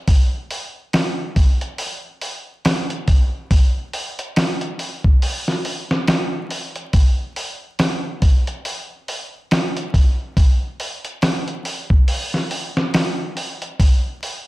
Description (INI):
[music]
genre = trip hop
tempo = 70 BPM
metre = 4/4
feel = swing 58% on 16ths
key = none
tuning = none
[part]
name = dusty soul sampler-style drum kit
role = drums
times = 0.1-14.5 s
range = hi-hat, kick drum, snare drum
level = -17 LUFS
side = equal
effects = none
[sound]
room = light reverb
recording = dark, warm production, vinyl crackle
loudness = -17 LUFS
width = side -18 dB against mid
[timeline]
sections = 0.0-14.5 A section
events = none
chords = none